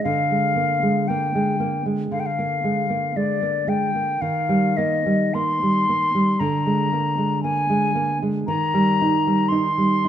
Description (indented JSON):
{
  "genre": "romantic duo for flute and classical guitar",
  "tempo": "58 BPM",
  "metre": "4/4",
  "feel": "rubato",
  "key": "Eb major",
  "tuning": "A4 = 440 Hz",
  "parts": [
    { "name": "concert flute", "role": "melody", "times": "0.0-10.1 s", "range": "D5 to C6", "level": "-22 LUFS", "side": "left 3 dB", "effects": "none" },
    { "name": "nylon-string guitar", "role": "accompaniment", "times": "0.0-10.1 s", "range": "D3 to Eb4", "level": "-21 LUFS", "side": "right 2 dB", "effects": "none" }
  ],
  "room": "moderate recital hall reverb, RT60 1.4 s",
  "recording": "minimal, uncompressed stereo recording",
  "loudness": "-19 LUFS",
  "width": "side -10 dB against mid",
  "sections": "0.0-10.1 A section",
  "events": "none",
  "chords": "0.0 Bb7/D; 4.2 Eb; 6.4 Bb7/D; 8.5 Eb",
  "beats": "| 0.04 1.08 2.12 3.16 | 4.21 5.34 6.39 7.44 | 8.47 9.51"
}